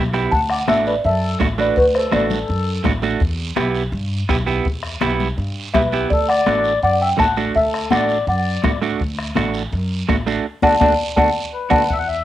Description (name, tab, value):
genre	latin, cumbia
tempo	166 BPM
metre	4/4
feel	straight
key	unclear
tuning	A4 = 441 Hz
part	semi-hollow electric guitar	accompaniment	0.0-11.8 s	A3 to G4	-21 LUFS	right 6 dB	cassette tape
part	upright bass	bass	0.0-12.2 s	A1 to G2	-24 LUFS	equal	none
part	bombo	percussion	0.1-12.1 s	none	-24 LUFS	left 2 dB	none
part	guiro	percussion	0.1-12.2 s	none	-32 LUFS	right 6 dB	none
part	buzzing marimba with soft mallets	melody	0.3-2.8, 5.7-11.8 s	B4 to A5	-17 LUFS	equal	cassette tape
part	mellow accordion	second line	0.3-2.8, 5.7-8.8, 11.5-12.2 s	F#4 to F#5	-23 LUFS	left 5 dB	cassette tape
part	congas	percussion	0.3-11.8 s	none	-25 LUFS	left 7 dB	none
room	moderate studio reverb, RT60 0.6 s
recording	home recording on cassette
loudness	-16 LUFS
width	side -13 dB against mid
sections	0.3-11.9 A section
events	band accent 10.4-11.9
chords	0.3 D; 3.2 Em; 6.1 D